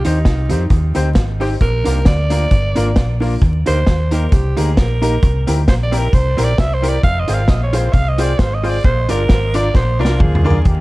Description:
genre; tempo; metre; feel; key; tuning
ska; 133 BPM; 4/4; swing 55% on 8ths; unclear; A4 = 440 Hz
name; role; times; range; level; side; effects
breathy alto saxophone; melody; 0.0-10.7 s; Eb4 to F5; -22 LUFS; right 2 dB; dub echo
hollow-body jazz guitar; accompaniment; 0.0-10.6 s; C4 to C5; -26 LUFS; right 4 dB; dub echo
bright upright piano; stabs; 0.0-10.6 s; Bb3 to D5; -24 LUFS; left 4 dB; dub echo
vintage drum kit; drums; 0.0-10.8 s; hi-hat, kick drum, snare drum, toms; -16 LUFS; equal; none
hollow-body short-scale fingered electric bass; bass; 0.1-10.8 s; F1 to F2; -17 LUFS; equal; none
warm horn section; melody; 10.0-10.8 s; Bb3 to Ab4; -26 LUFS; left 1 dB; dub echo
room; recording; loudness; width
small room reverb; dark, warm production, vinyl crackle; -13 LUFS; side -20 dB against mid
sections
0.0-10.7 A section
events
alto saxophone solo 0.0-10.7; drum fill 9.8-10.7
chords
0.0 Cm; 1.6 Bb; 3.4 Eb; 5.2 C7; 7.0 Fm; 8.8 Bb

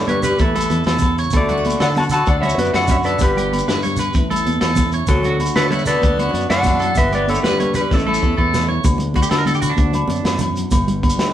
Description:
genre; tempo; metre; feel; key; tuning
highlife guitar band; 128 BPM (dotted quarters); 12/8; straight; D major; A4 = 438 Hz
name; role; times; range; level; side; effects
clean electric guitar; melody; 0.0-8.7 s; E4 to A5; -21 LUFS; left 1 dB; spring reverb
raspy tenor saxophone; second line; 0.0-8.7 s; E3 to F#4; -26 LUFS; left 2 dB; none
nylon-string guitar; accompaniment; 0.0-11.3 s; E2 to G4; -26 LUFS; left 3 dB; none
fingered electric bass; bass; 0.0-11.3 s; G1 to D3; -22 LUFS; equal; none
congas; percussion; 0.0-11.3 s; none; -26 LUFS; right 2 dB; none
electric guitar at the edge of break-up; arpeggios; 0.1-10.4 s; D4 to C#5; -24 LUFS; right 2 dB; none
crunchy breakbeat drum kit; drums; 0.1-11.3 s; hi-hat, kick drum, snare drum; -20 LUFS; equal; none
agogo bells; percussion; 0.2-11.3 s; none; -26 LUFS; equal; none
shekere; percussion; 0.2-11.2 s; none; -28 LUFS; right 3 dB; none
room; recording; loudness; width
moderate studio reverb, RT60 0.7 s; band playing live in one room; -15 LUFS; side -11 dB against mid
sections
0.0-8.8 A section; 8.8-11.3 B section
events
drum fill 7.9-8.8; clean electric guitar solo 8.8-11.3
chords
0.4 A; 1.3 D; 3.2 G; 4.2 A; 5.1 D; 6.0 Bm/D; 7.0 G; 7.9 A; 8.8 D; 9.8 Bm/D; 10.7 G

